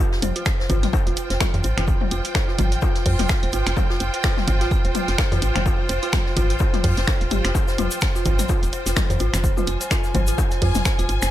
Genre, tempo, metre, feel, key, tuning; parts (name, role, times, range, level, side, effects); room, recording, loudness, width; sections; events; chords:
minimal techno; 127 BPM; 4/4; swing 57% on 16ths; F minor; A4 = 443 Hz
rich symphonic string section; texture; 0.0-11.3 s; F4 to Ab5; -28 LUFS; equal; sidechain pumping
jazz brush drum kit; drums; 0.1-11.3 s; hi-hat, shaker, snare drum; -35 LUFS; left 1 dB; sidechain pumping on hats, high-pass filter on hats, high-pass filter on snare, sidechain pumping on perc, high-pass filter on perc, high-pass filter on room
dark detuned synth bell; riff; 0.2-11.3 s; F4 to C5; -30 LUFS; right 1 dB; chorus, sidechain pumping, ping-pong delay
woody FM bass; bass; 0.2-11.3 s; Eb1 to F2; -23 LUFS; equal; sidechain pumping
punchy analog drum machine; drums; 0.2-11.3 s; finger snaps, hi-hat; -27 LUFS; right 1 dB
electronic toms, bongos, congas and claves; percussion; 0.2-11.1 s; -29 LUFS; left 6 dB; tape echo
electronic kick drum; drums; 0.5-11.0 s; -22 LUFS; equal
tube shaker; percussion; 7.5-11.3 s; -32 LUFS; left 3 dB
small room ambience; -18 LUFS; side -13 dB against mid
0.0-11.3 A section
0.0 Fm